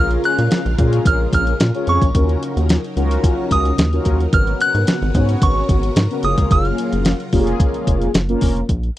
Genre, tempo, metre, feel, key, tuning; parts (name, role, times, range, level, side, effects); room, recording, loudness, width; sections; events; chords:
early-eighties boogie funk; 110 BPM; 4/4; straight; A4 = 440 Hz
delicate synth tine bell; melody; 0.0-8.4 s; C#6 to F#6; -21 LUFS; right 1 dB; chorus
mellow synth brass; accompaniment; 0.0-8.6 s; A#3 to C#5; -22 LUFS; left 2 dB; chorus
string machine, violins; sustained chords; 0.0-8.7 s; C#3 to A#4; -28 LUFS; equal; ensemble chorus
rubbery square bass; bass; 0.0-8.9 s; E#1 to A#2; -18 LUFS; equal
clean 12-bit digital drum machine; drums; 0.1-9.0 s; hi-hat, kick drum, snare drum; -17 LUFS; equal
little or no reverb; dry, close 1970s-style studio recording; -14 LUFS; side -14 dB against mid
0.0-8.7 A section
0.0 A#m7; 2.1 D#m7; 4.3 G#m11; 6.2 F#maj7